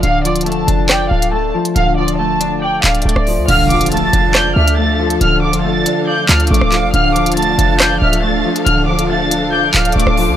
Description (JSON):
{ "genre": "hip hop, drill", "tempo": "139 BPM", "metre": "4/4", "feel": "half-time", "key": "D minor", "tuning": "A4 = 440 Hz", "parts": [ { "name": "warm symphonic violin section", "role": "melody", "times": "0.0-10.4 s", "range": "D5 to A6", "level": "-18 LUFS", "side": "equal", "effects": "low-pass filter" }, { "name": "semi-hollow electric guitar", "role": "accompaniment", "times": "0.0-10.4 s", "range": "D3 to D5", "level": "-18 LUFS", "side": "left 2 dB", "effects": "lush chorus, low-pass filter" }, { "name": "short 808-style bass", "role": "bass", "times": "0.0-10.4 s", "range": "C1 to D2", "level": "-17 LUFS", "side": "equal", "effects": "none" }, { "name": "drill drum kit", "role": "drums", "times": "0.0-10.3 s", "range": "crash cymbal, handclaps, hi-hat, rim click", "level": "-17 LUFS", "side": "equal", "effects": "none" }, { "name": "breathy concert flute", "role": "second line", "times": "3.5-9.9 s", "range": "E5 to A5", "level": "-21 LUFS", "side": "right 6 dB", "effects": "digital delay" }, { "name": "warm studio string section", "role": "sustained chords", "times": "3.5-10.4 s", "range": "F3 to F5", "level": "-21 LUFS", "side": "equal", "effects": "none" }, { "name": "impact", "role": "sound effects", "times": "3.5-5.2 s", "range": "none", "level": "-23 LUFS", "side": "equal", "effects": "none" } ], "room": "studio reverb", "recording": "none", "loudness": "-11 LUFS", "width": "side -10 dB against mid", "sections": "0.0-3.5 A section; 3.5-10.4 B section", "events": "impact 3.5-5.2", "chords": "0.0 Dm" }